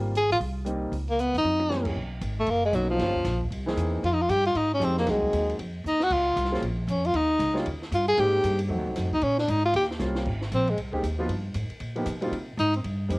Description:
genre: jazz, small-group swing and bop.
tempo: 232 BPM.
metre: 4/4.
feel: swing 61% on 8ths.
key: Ab major.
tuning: A4 = 441 Hz.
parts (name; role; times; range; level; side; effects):
warm concert grand piano; accompaniment; 0.0-13.2 s; Fb3 to G#4; -30 LUFS; equal; cassette tape.
upright bass; bass; 0.0-13.2 s; F#1 to C3; -29 LUFS; equal; transformer saturation.
clear tenor saxophone; melody; 0.2-12.8 s; F3 to Ab4; -24 LUFS; equal; cassette tape.
compact cocktail drum kit; drums; 0.2-13.2 s; crash cymbal, hi-hat, kick drum, ride cymbal, snare drum, toms; -39 LUFS; equal; cassette tape.
room: light reverb, small room ambience.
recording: home recording on cassette.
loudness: -23 LUFS.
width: side -24 dB against mid.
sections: 0.0-2.0 A section; 2.0-10.2 B section; 10.2-13.2 A section.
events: drum fill 1.4, 5.8, 10.0.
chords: 0.0 Abmaj9; 0.9 Db13; 1.4 Gb7b9; 2.0 Bmaj7; 3.0 Gm7b5; 3.5 C7alt; 4.0 Fm9; 5.1 Cm7b5; 5.6 Ebsus2; 6.1 Bbm; 7.1 Eb7; 8.2 Abmaj9; 8.7 F7b9; 9.2 Bb7#9; 9.7 Eb13; 10.2 Abadd9; 11.3 G7alt; 12.3 C5.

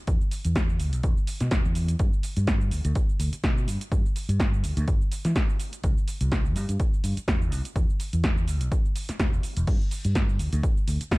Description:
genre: filtered disco house.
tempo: 125 BPM.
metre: 4/4.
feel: swing 55% on 16ths.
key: G major.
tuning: A4 = 441 Hz.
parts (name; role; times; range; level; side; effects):
fingered electric bass; bass; 0.1-11.2 s; E1 to E3; -26 LUFS; equal; sidechain pumping.
electronic kick drum; drums; 0.1-11.2 s; none; -25 LUFS; equal; studio reverb.
punchy analog drum machine; drums; 0.1-11.2 s; cabasa, crash cymbal, hi-hat, snare drum; -31 LUFS; equal; sidechain pumping on hats, studio reverb, sidechain pumping on perc, sidechain pumping on cymbals.
room: digital ambience.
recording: dark, warm production.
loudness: -23 LUFS.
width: side -23 dB against mid.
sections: 0.0-11.2 A section.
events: none.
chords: none.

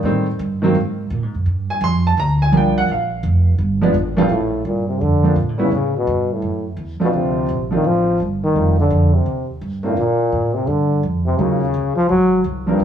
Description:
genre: jazz, small-group swing and bop.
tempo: 169 BPM.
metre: 4/4.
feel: swing 64% on 8ths.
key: Bb major from 4.3 s.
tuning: A4 = 438 Hz.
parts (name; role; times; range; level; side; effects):
warm baby grand piano; accompaniment; 0.0-12.8 s; Bb2 to Eb6; -19 LUFS; right 2 dB; none.
upright bass; bass; 0.0-12.8 s; F1 to Bb2; -20 LUFS; right 1 dB; none.
mellow trombone; melody; 4.2-12.8 s; G2 to Gb3; -18 LUFS; left 1 dB; none.
room: moderate stone room reverb, RT60 1.5 s.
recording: band playing live in one room.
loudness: -15 LUFS.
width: side -9 dB against mid.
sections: 0.0-4.3 A section; 4.3-12.8 B section.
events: none.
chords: 0.0 Am7b5; 0.8 Absus2; 1.5 Gm7; 2.9 Bb7(no3); 4.3 Bbmaj7; 5.7 A5; 7.1 Dm7; 8.5 F9; 10.0 Bbmaj7; 11.4 Ebm7; 12.1 Ab9.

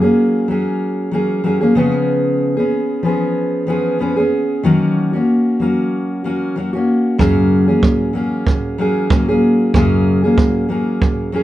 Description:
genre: acoustic pop.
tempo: 94 BPM.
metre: 4/4.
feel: swing 55% on 16ths.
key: F# major.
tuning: A4 = 444 Hz.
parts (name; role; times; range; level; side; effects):
fingerpicked steel-string acoustic guitar; accompaniment; 0.0-11.4 s; F#2 to G#4; -14 LUFS; equal; none.
kick drum; drums; 7.2-11.2 s; none; -18 LUFS; right 2 dB; none.
room: wet studio reverb, RT60 0.5 s.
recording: heard from further back in the room.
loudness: -14 LUFS.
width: side -14 dB against mid.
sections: 0.0-11.4 A section.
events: none.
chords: 0.0 F#add9; 1.8 C#7; 4.6 D#m7; 7.2 F#add9.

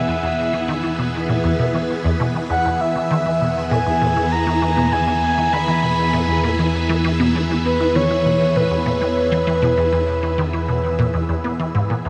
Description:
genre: ambient.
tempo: 99 BPM.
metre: 4/4.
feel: straight.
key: unclear.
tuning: A4 = 440 Hz.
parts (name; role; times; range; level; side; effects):
breathy flute-like synth lead; melody; 0.0-11.6 s; B4 to B5; -23 LUFS; equal; chorus, tremolo, tape echo.
phased string machine; sustained chords; 0.0-12.1 s; E3 to E5; -26 LUFS; equal; ensemble chorus, phaser.
resonant blip pluck; riff; 0.0-12.1 s; E2 to B3; -24 LUFS; equal; phaser, subtle chorus, tape echo.
analog drone; bass; 0.0-12.1 s; E2; -27 LUFS; equal; chorus, tube saturation.
room: wet huge ambient reverb, RT60 8.4 s.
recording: none.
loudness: -19 LUFS.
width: mono.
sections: 0.0-12.1 A section.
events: none.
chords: 0.0 E.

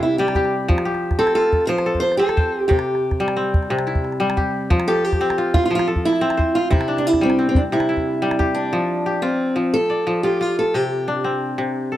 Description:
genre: west african traditional, West African string and xylophone music.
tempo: 120 BPM (dotted quarters).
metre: 12/8.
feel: straight.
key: F major.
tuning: A4 = 440 Hz.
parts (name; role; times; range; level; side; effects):
picked old ladder-braced acoustic guitar; melody; 0.0-11.1 s; C4 to C5; -19 LUFS; right 1 dB; none.
kora; arpeggios; 0.0-12.0 s; C3 to D5; -22 LUFS; left 2 dB; none.
calabash; percussion; 0.3-8.5 s; none; -21 LUFS; equal; none.
room: light reverb, small room ambience.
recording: dry, close 1970s-style studio recording.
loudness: -17 LUFS.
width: side -13 dB against mid.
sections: 0.0-8.7 A section; 8.7-12.0 B section.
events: none.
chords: 0.0 C; 0.7 F; 2.7 C; 4.7 F; 6.7 C; 8.7 F; 10.7 C5.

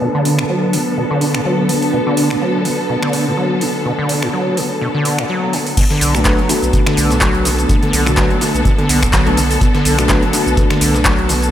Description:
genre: acid house.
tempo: 125 BPM.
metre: 4/4.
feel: swing 55% on 16ths.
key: B minor.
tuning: A4 = 441 Hz.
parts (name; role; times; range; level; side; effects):
muted studio string section; sustained chords; 0.0-11.5 s; D3 to A4; -20 LUFS; equal; sidechain pumping, low-pass filter.
acid bass, saw; riff; 0.0-11.3 s; A2 to F#3; -18 LUFS; equal; overdrive, analog chorus, diffuse ambient delay.
bell-like tine electric piano; stabs; 0.0-11.5 s; A3 to B4; -22 LUFS; left 1 dB; analog chorus, diffuse ambient delay.
ethereal airy pad; texture; 0.0-5.8 s; D4 to A5; -24 LUFS; equal; ensemble chorus, built-in reverb, sidechain pumping.
booming analog drum machine; drums; 0.3-11.5 s; crash cymbal, finger snaps, handclaps, hi-hat, shaker; -20 LUFS; equal; none.
dusty soul sampler-style drum kit; drums; 5.8-11.5 s; hi-hat, snare drum; -29 LUFS; equal; high-pass filter on hats, high-pass filter on snare.
electronic kick drum; drums; 5.8-11.2 s; none; -16 LUFS; equal; none.
warm sub bass; bass; 6.0-11.5 s; F#1 to B1; -20 LUFS; equal; sidechain pumping.
room: moderate lush hall reverb, RT60 1.7 s, digital ambience.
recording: dreamy mix soaked in reverb.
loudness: -12 LUFS.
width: side -11 dB against mid.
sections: 0.0-5.8 A section; 5.8-11.5 B section.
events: filter sweep on acid bass 0.0-5.8; filter sweep on string section 0.0-5.8; drop 5.8-11.5.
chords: 0.0 Bm7.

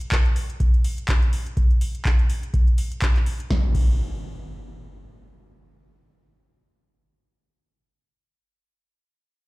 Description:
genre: acid house.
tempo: 124 BPM.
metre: 4/4.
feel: swing 56% on 16ths.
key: none.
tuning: none.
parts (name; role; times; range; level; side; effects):
electro analog drum machine; drums; 0.0-3.9 s; crash cymbal, handclaps, hi-hat, snare drum; -30 LUFS; equal; overdrive.
electronic kick drum; drums; 0.1-3.9 s; none; -19 LUFS; equal; overdrive.
impact; sound effects; 3.5-8.4 s; none; -27 LUFS; equal; none.
room: little or no reverb.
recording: played on a big sound system in a bare room, large studio reverb.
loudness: -19 LUFS.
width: side -22 dB against mid.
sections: 0.0-3.5 A section; 3.5-7.4 B section.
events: none.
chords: none.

